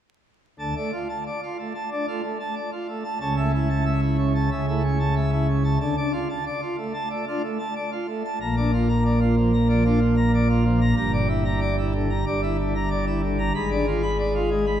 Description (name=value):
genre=classical, organ toccata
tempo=93 BPM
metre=4/4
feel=straight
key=unclear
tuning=A4 = 440 Hz
part: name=pipe organ, plenum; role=solo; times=0.6-14.8 s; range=G1 to B5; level=-21 LUFS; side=equal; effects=none
room=wet church reverb, RT60 2.7 s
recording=dark, warm production, vinyl crackle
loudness=-21 LUFS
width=side -10 dB against mid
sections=0.6-14.8 A section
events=none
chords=0.6 Dm; 3.2 A/C#; 5.8 Dm; 8.4 Bb; 11.0 Em7b5/G; 13.6 G#dim7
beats=| 0.60 1.25 1.91 2.56 | 3.21 3.86 4.51 5.16 | 5.81 6.46 7.11 7.76 | 8.41 9.05 9.69 10.33 | 10.98 11.62 12.27 12.91 | 13.55 14.19